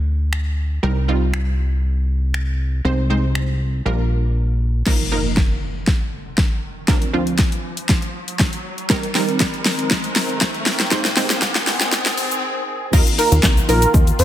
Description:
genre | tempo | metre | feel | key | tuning
dance-pop | 119 BPM | 4/4 | straight | unclear | A4 = 441 Hz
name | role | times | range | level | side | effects
plucky analog bass | bass | 0.0-4.8, 12.9-14.2 s | Bb1 to F2 | -18 LUFS | equal | sidechain pumping
pop drum kit | drums | 0.3-14.2 s | crash cymbal, finger snaps, handclaps, hi-hat, kick drum, shaker, snare drum | -18 LUFS | equal | none
wide unison pluck | accompaniment | 0.8-14.2 s | D2 to C5 | -24 LUFS | right 2 dB | sidechain pumping
riser and impact | sound effects | 4.9-12.4 s | none | -27 LUFS | equal | none
sweeping resonant pad | sustained chords | 8.9-14.2 s | C2 to Bb4 | -26 LUFS | left 1 dB | lush chorus, sidechain pumping
expressive portamento lead | melody | 13.2-14.2 s | Bb4 to C5 | -19 LUFS | right 2 dB | chorus, sidechain pumping, ping-pong delay
room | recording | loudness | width
light reverb, digital ambience | dense, heavily limited modern master, high-pass filter | -16 LUFS | side -12 dB against mid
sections
0.0-4.9 A section; 4.9-12.9 B section; 12.9-14.2 C section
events
drums muted 4.4-4.9; build-up 4.9-12.9; drum fill 4.9-12.4; impact 4.9-6.9; riser 4.9-12.9; filter sweep 4.9-12.9; break 12.4-12.9; drop 12.9-14.2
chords
0.0 N.C.; 0.8 Cm; 2.8 Ab/C; 3.9 Bb6; 4.9 Ebsus2; 6.9 Bbadd9/D (rootless); 8.9 Cm7; 10.9 Ab/C; 12.9 Ebsus2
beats
0.33 | 0.83 1.34 1.84 2.35 | 2.85 3.35 3.86 4.36 | 4.87 5.37 5.87 6.38 | 6.88 7.39 7.89 8.39 | 8.90 9.40 9.91 10.41 | 10.92 11.42 11.93 12.43 | 12.93 13.44 13.94

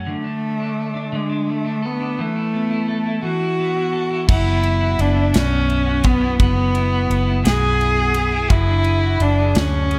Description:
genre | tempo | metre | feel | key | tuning
six-eight pop ballad | 57 BPM (dotted quarters) | 6/8 | straight | unclear | A4 = 441 Hz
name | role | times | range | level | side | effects
clean electric guitar | accompaniment | 0.0-10.0 s | F#2 to A4 | -26 LUFS | equal | double-tracked
rich cello | melody | 0.1-10.0 s | G#3 to G#4 | -23 LUFS | equal | tape echo
vintage muted fingered electric bass | bass | 4.3-10.0 s | F#1 to D2 | -22 LUFS | equal | none
modern studio drum kit | drums | 4.3-10.0 s | crash cymbal, kick drum, ride cymbal, snare drum | -21 LUFS | equal | none
room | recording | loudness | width
light reverb | none | -19 LUFS | mono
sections
0.0-4.3 A section; 4.3-10.0 B section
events
none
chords
0.1 D5; 2.2 Esus4; 4.3 E/F#; 8.5 G#(b5, no3)/F#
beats
| 0.07 1.12 | 2.18 3.23 | 4.29 5.34 | 6.39 7.45 | 8.50 9.55

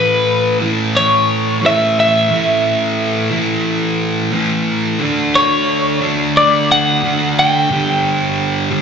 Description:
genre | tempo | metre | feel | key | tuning
rock | 89 BPM | 4/4 | straight | A mixolydian | A4 = 442 Hz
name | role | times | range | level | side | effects
twelve-string electric guitar | melody | 0.0-8.8 s | B4 to G5 | -14 LUFS | left 1 dB | slapback echo
thick fuzz guitar | riff | 0.0-8.8 s | G2 to D4 | -16 LUFS | right 1 dB | distortion
room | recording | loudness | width
light reverb | live gig heard through the venue's PA, club reverb, nothing above 7.6 kHz | -12 LUFS | side -6 dB against mid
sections
0.0-8.8 A section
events
none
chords
0.0 A5; 5.0 Dmaj7; 7.7 G5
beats
0.27 0.94 1.62 | 2.30 2.97 3.65 4.33 | 5.00 5.68 6.35 7.03 | 7.70 8.37

